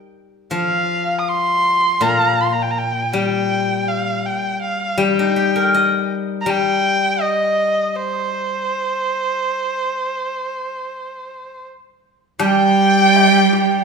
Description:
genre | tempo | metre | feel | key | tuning
chinese traditional, Chinese chamber ensemble | 81 BPM | 4/4 | rubato | unclear | A4 = 439 Hz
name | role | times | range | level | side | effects
steel-string zither | accompaniment | 0.0-13.8 s | Bb2 to Eb5 | -20 LUFS | left 4 dB | none
warm erhu | melody | 0.5-13.8 s | C5 to Eb6 | -19 LUFS | right 1 dB | none
bright cello | second line | 12.4-13.8 s | G3 | -15 LUFS | right 5 dB | none
hammered dulcimer | second line | 12.4-13.8 s | G4 | -20 LUFS | right 7 dB | none
rich erhu | second line | 12.4-13.8 s | G5 | -20 LUFS | left 6 dB | none
woodblock | percussion | 12.4-13.3 s | none | -28 LUFS | left 3 dB | none
room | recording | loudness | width
wet recital hall reverb, RT60 1.3 s | recorded in a church or concert hall | -15 LUFS | side -5 dB against mid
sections
0.0-12.4 A section; 12.4-13.8 B section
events
none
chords
none

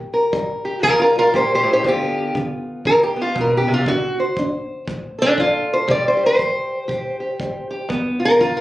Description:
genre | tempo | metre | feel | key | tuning
acoustic country blues, solo or duo | 119 BPM | 4/4 | swing 60% on 8ths | G mixolydian | A4 = 441 Hz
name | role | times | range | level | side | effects
fingerpicked steel-string acoustic guitar | melody | 0.0-8.6 s | G2 to D5 | -16 LUFS | equal | none
kick drum | drums | 0.3-8.6 s | none | -32 LUFS | equal | none
room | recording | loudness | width
light reverb | recorded on a phone in the room, club reverb | -16 LUFS | side -16 dB against mid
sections
0.0-8.6 A section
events
steel-string acoustic guitar solo 0.0-8.6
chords
0.0 C5; 1.8 G7; 3.9 D5; 5.9 C5; 7.9 G7

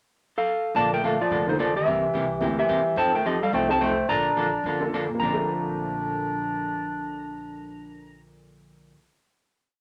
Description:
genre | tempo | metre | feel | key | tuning
country, western swing | 216 BPM | 4/4 | swing 60% on 8ths | Bb major | A4 = 440 Hz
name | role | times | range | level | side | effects
clean lap steel guitar | melody | 0.4-8.2 s | Eb4 to Bb5 | -26 LUFS | equal | none
vintage hollow-body jazz guitar | accompaniment | 0.7-9.0 s | Bb2 to A4 | -32 LUFS | equal | none
upright bass | bass | 0.7-8.9 s | F1 to F2 | -41 LUFS | equal | none
growling clarinet | second line | 0.8-8.2 s | D3 to D4 | -32 LUFS | equal | none
honky-tonk upright piano | accompaniment | 1.5-9.0 s | Bb2 to A4 | -34 LUFS | equal | none
room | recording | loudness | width
wet studio reverb, RT60 0.5 s | none | -25 LUFS | mono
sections
0.0-0.8 pickup bar; 0.8-5.2 A section; 5.2-7.4 final chord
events
none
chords
0.0 N.C.; 0.8 Bbmaj7; 1.9 C7; 3.0 F9; 4.1 Bbmaj7

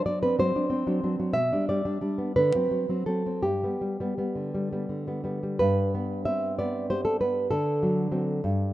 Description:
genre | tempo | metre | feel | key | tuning
romantic piece for solo classical guitar | 54-66 BPM (dotted quarters) | 6/8 | rubato | G major | A4 = 440 Hz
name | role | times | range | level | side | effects
nylon-string guitar | solo | 0.0-8.7 s | G2 to E5 | -24 LUFS | equal | none
room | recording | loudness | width
light reverb, small room ambience | rough home demo mix | -24 LUFS | side -15 dB against mid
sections
0.0-5.6 A section; 5.6-8.7 B section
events
none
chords
0.0 D7; 1.3 G/B; 2.4 D7; 3.4 G; 7.5 D7

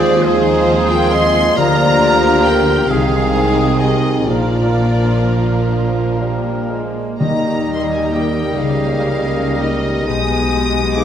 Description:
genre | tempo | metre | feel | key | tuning
classical, slow romantic movement for symphony orchestra | 38-47 BPM (dotted quarters) | 6/8 | rubato | Eb major | A4 = 440 Hz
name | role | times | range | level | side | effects
rich studio violin section | melody | 0.0-11.0 s | C5 to Eb6 | -22 LUFS | left 2 dB | none
bright oboe | second line | 0.0-11.0 s | Ab4 to Eb5 | -25 LUFS | right 2 dB | none
mellow hollow small flute group | second line | 0.0-11.0 s | Eb4 to Ab5 | -22 LUFS | equal | none
rich studio violin section | second line | 0.0-11.0 s | C4 to Ab4 | -27 LUFS | left 2 dB | none
warm clarinet | second line | 0.0-11.0 s | F4 to C5 | -23 LUFS | left 5 dB | none
rich studio viola section | accompaniment | 0.0-11.0 s | Eb3 to C4 | -24 LUFS | right 1 dB | none
warm bassoon | accompaniment | 0.0-11.0 s | Eb3 to Ab3 | -24 LUFS | right 1 dB | none
dark French horn section | sustained chords | 0.0-11.0 s | Ab3 to F4 | -23 LUFS | left 3 dB | none
concert harp | arpeggios | 0.0-11.0 s | Bb2 to F5 | -23 LUFS | left 5 dB | none
dark trumpet section | stabs | 0.0-11.0 s | G4 to C5 | -24 LUFS | right 3 dB | none
rich studio double bass section | bass | 0.0-11.0 s | Bb1 to Eb2 | -22 LUFS | right 3 dB | none
warm studio cello section | bass | 0.0-11.0 s | Bb2 to Eb3 | -22 LUFS | right 4 dB | none
timpani | percussion | 7.2-8.6 s | Eb3 | -23 LUFS | left 1 dB | none
room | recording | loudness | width
wet scoring stage reverb, RT60 1.8 s | none | -13 LUFS | side -9 dB against mid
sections
0.0-11.0 A section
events
none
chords
0.0 Fm7/Eb; 1.6 Bb/D; 2.9 Ab/C; 4.3 Bb; 7.2 Eb; 8.6 Eb7/Db; 10.1 Abm/Cb

